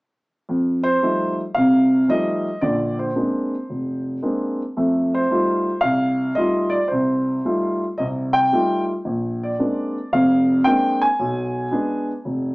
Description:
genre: solo jazz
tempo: 112 BPM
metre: 4/4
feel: swing 69% on 8ths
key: unclear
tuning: A4 = 440 Hz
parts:
  - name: dark grand piano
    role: solo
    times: 0.5-12.5 s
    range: F1 to Ab5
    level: -18 LUFS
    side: equal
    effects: none
room: wet small room reverb, RT60 0.5 s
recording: heard from further back in the room, small speaker sound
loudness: -18 LUFS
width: side -24 dB against mid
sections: 0.5-12.5 A section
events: none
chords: 0.5 F9; 2.6 Bb9; 4.8 F9; 9.0 Bb9; 11.2 Bdim7

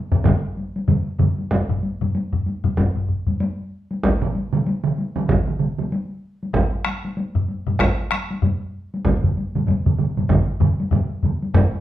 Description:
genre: japanese traditional, taiko drum ensemble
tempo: 96 BPM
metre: 4/4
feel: swing 60% on 16ths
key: none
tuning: none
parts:
  - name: taiko ensemble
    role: percussion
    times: 0.1-11.7 s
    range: none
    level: -21 LUFS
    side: left 2 dB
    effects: none
  - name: taiko ensemble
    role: percussion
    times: 0.1-11.4 s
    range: none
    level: -23 LUFS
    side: right 4 dB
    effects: none
  - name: solo taiko drums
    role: percussion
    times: 0.3-11.7 s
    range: none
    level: -26 LUFS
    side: left 2 dB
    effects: none
  - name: taiko ensemble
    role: percussion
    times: 0.3-11.7 s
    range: none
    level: -22 LUFS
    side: right 1 dB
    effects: none
room: wet large studio reverb, RT60 0.8 s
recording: band playing live in one room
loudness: -19 LUFS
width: side -13 dB against mid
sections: 0.0-11.5 A section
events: none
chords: none

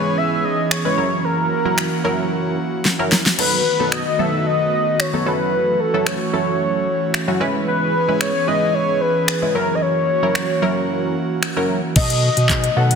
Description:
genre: dance-pop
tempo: 112 BPM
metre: 4/4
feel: straight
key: unclear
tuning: A4 = 440 Hz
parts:
  - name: warm velvety synth lead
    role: melody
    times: 0.0-13.0 s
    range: A4 to F#5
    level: -20 LUFS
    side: left 1 dB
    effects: chorus, digital delay
  - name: funky polysynth comp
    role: accompaniment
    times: 0.0-13.0 s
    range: F#3 to B4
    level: -23 LUFS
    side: right 1 dB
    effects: chorus, sidechain pumping
  - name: airy breathy pad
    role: sustained chords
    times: 0.0-13.0 s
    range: D#3 to G#4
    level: -23 LUFS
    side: right 2 dB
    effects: chorus, sidechain pumping
  - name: smooth R&B drum kit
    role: drums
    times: 0.7-13.0 s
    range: crash cymbal, finger snaps, handclaps, hi-hat, kick drum, snare drum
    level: -21 LUFS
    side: left 1 dB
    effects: soft clipping on snare
  - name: saturated sub bass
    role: bass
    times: 12.0-13.0 s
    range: B2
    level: -18 LUFS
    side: left 1 dB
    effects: sidechain pumping
room: moderate lush hall reverb, RT60 2.2 s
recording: dense, heavily limited modern master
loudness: -16 LUFS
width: side -6 dB against mid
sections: 0.0-12.0 A section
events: drum fill 2.9-3.4; break 10.9-12.0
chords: 0.0 C#m7; 1.0 F#7; 3.4 B7; 5.3 F#m7; 7.4 C#m7; 9.5 F#7; 12.0 B7

